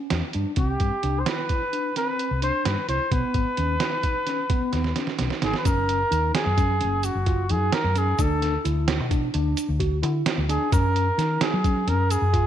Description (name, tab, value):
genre	progressive instrumental, band music in an uneven meter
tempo	260 BPM (eighths)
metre	11/8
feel	straight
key	unclear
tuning	A4 = 445 Hz
part	tine electric piano	arpeggios	0.0-12.5 s	B3 to F#4	-30 LUFS	equal	medium stereo tremolo
part	hollow-body short-scale fingered electric bass	bass	0.1-12.5 s	F#1 to F#3	-25 LUFS	left 1 dB	none
part	trip hop sampler-style drum kit	drums	0.1-12.4 s	hi-hat, kick drum, snare drum	-26 LUFS	right 2 dB	none
part	mellow trumpet	melody	0.6-12.5 s	F#4 to C5	-26 LUFS	equal	none
part	egg shaker	percussion	5.7-12.3 s	none	-42 LUFS	left 18 dB	none
room	light reverb, digital ambience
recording	1960s-style stereo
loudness	-21 LUFS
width	side -10 dB against mid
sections	0.0-5.7 A section; 5.7-12.5 B section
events	drum fill 4.7-5.7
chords	0.0 Em; 0.6 C; 3.1 B; 5.7 F#; 8.2 N.C.; 10.7 F#